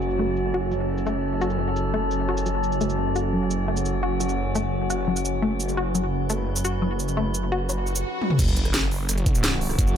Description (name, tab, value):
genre	dark technical drum and bass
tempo	172 BPM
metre	4/4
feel	straight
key	F# minor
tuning	A4 = 438 Hz
part	metallic inharmonic drone	sustained chords	0.0-10.0 s	F#3 to B4	-27 LUFS	equal	chorus, built-in reverb, sidechain pumping
part	snarling distorted saw bass	bass	0.0-10.0 s	F#1	-26 LUFS	equal	overdrive
part	drum and bass drum kit	drums	0.0-9.9 s	crash cymbal, hi-hat, rim click, shaker, snare drum, toms	-27 LUFS	equal	low-pass filter on hats, low-pass filter on cymbals, low-pass filter on snare, low-pass filter on perc, low-pass filter on toms, low-pass filter on room
part	wide unison pluck	arpeggios	0.2-7.7 s	F#3 to F#4	-29 LUFS	left 3 dB	cassette tape, sidechain pumping, tape echo
part	swell and sub drop	sound effects	7.8-9.8 s	none	-28 LUFS	right 1 dB	none
part	electronic kick drum	drums	8.4-9.9 s	none	-21 LUFS	equal	none
room	light reverb, digital ambience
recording	none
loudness	-22 LUFS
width	side -9 dB against mid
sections	0.0-8.4 A section; 8.4-10.0 B section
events	filter sweep on drum 0.0-8.4; filter sweep on synth arpeggio sound 0.0-8.4; swell 7.8-8.4; drum fill 8.2; drop 8.4-10.0; impact 8.4-9.8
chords	0.0 F#m; 8.4 F#5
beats	| 0.02 0.37 0.72 1.06 | 1.41 1.76 2.11 2.46 | 2.81 3.16 3.51 3.86 | 4.20 4.55 4.90 5.25 | 5.60 5.95 6.30 6.65 | 7.00 7.34 7.69 8.04 | 8.39 8.74 9.09 9.44 | 9.79